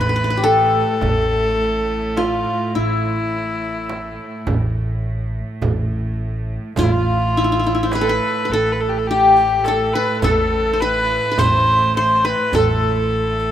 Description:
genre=Turkish makam ensemble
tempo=104 BPM (eighths)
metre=10/8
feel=straight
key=A makam nihavent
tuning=A4 = 441 Hz
part: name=qanun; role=melody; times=0.0-13.5 s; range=E4 to C5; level=-19 LUFS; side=left 1 dB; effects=none
part: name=bright kamancheh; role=second line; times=0.0-13.5 s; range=E4 to C5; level=-20 LUFS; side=equal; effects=none
part: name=upright bass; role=bass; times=0.0-13.5 s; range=A1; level=-23 LUFS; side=equal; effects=none
part: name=clear chamber cello section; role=drone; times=0.0-13.5 s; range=A2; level=-27 LUFS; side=right 2 dB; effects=stereo widening
part: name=darbuka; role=percussion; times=1.0-13.5 s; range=none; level=-26 LUFS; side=right 2 dB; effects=none
part: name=frame drum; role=percussion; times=1.0-12.8 s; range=none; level=-28 LUFS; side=right 5 dB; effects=none
part: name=riq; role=percussion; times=6.8-13.5 s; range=none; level=-32 LUFS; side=right 3 dB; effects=none
room=light reverb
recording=rough home demo mix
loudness=-16 LUFS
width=side -10 dB against mid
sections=0.0-13.5 A section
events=none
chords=none

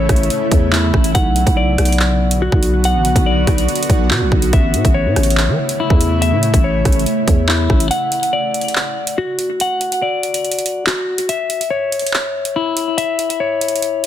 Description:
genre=hip hop, drill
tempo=142 BPM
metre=4/4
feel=half-time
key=unclear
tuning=A4 = 439 Hz
part: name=granular cloud pad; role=sustained chords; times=0.0-7.9 s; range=C#3 to F#4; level=-22 LUFS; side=right 1 dB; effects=built-in reverb
part: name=clean electric guitar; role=arpeggios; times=0.0-14.1 s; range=E4 to F#5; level=-18 LUFS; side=left 3 dB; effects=low-pass filter, digital delay
part: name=growling 808-style bass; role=bass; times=0.0-7.9 s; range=A1 to E3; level=-16 LUFS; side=equal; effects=none
part: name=drill drum kit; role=drums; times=0.1-14.1 s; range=handclaps, hi-hat, kick drum, rim click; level=-17 LUFS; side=right 1 dB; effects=none
room=light reverb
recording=dense, heavily limited modern master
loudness=-13 LUFS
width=side -11 dB against mid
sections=0.0-7.9 A section; 7.9-14.1 B section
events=break 7.9-14.1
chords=0.0 A; 1.1 Bm; 4.5 A; 7.9 D; 11.3 C#m

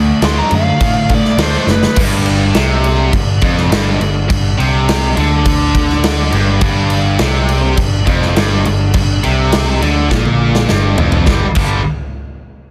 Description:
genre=hard rock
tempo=103 BPM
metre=4/4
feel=straight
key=unclear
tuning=A4 = 440 Hz
part: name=overdriven tonewheel organ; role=sustained chords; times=0.0-11.5 s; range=G3 to D5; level=-31 LUFS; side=equal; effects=none
part: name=scooped high-gain guitar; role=riff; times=0.0-11.8 s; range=F2 to D4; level=-21 LUFS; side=equal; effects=distortion
part: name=tight distorted guitar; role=riff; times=0.0-11.8 s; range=F2 to D4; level=-21 LUFS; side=equal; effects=distortion
part: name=picked electric bass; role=bass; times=0.0-11.8 s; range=F1 to A2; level=-18 LUFS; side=equal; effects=none
part: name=bluesy overdriven lead guitar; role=melody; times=0.2-2.0 s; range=B4 to C6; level=-21 LUFS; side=equal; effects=distortion, analog delay
part: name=big rock drum kit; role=drums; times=0.2-11.7 s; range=crash cymbal, kick drum, snare drum, toms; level=-18 LUFS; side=equal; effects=none
room=light reverb, small room ambience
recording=dense, heavily limited modern master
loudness=-13 LUFS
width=mono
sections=0.0-2.0 A section; 2.0-11.3 B section; 11.3-12.7 C section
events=lead electric guitar solo 0.0-2.0; drum fill 1.7, 10.1-11.3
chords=0.0 D; 2.0 G5

